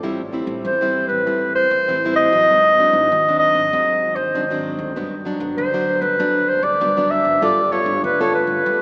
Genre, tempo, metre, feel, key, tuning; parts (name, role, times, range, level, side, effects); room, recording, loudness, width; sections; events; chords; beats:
samba and choro; 97 BPM; 4/4; straight; A4 = 440 Hz
nylon-string guitar; accompaniment; 0.0-8.8 s; G2 to A4; -26 LUFS; equal
upright bass; bass; 0.0-8.8 s; G1 to A2; -35 LUFS; equal
warm clarinet; melody; 0.7-8.8 s; B4 to E5; -19 LUFS; equal
wet cathedral reverb, RT60 4.0 s; recorded in a church or concert hall, small speaker sound; -18 LUFS; mono
0.0-8.8 A section
0.0 Am7; 2.5 G#7#11; 5.0 Gmaj7; 7.4 G9
| 0.03 0.65 1.26 1.88 | 2.50 3.11 3.73 4.34 | 4.96 5.58 6.19 6.81 | 7.43 8.04 8.66